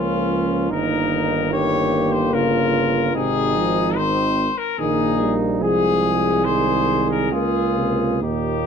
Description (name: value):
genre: classical, brass quintet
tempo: 66-74 BPM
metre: 3/4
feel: rubato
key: Ab major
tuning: A4 = 439 Hz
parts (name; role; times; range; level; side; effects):
- clear trumpet; melody; 0.0-8.7 s; F4 to Db5; -23 LUFS; left 8 dB; none
- warm flugelhorn; second line; 0.0-8.7 s; Db4 to Ab4; -25 LUFS; right 6 dB; none
- mellow French horn; accompaniment; 0.0-8.7 s; Ab3 to C4; -25 LUFS; left 5 dB; none
- mellow trombone; accompaniment; 0.0-8.7 s; Bb2 to G3; -26 LUFS; right 3 dB; none
- warm tuba; bass; 0.0-8.7 s; G1 to Eb2; -24 LUFS; right 4 dB; none
room: light reverb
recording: dark, warm production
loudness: -17 LUFS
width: side -7 dB against mid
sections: 0.0-8.7 A section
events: none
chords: 0.0 Bbm/Db; 0.7 Eb7/G; 3.2 Ab; 5.6 Ab/C; 7.3 Db6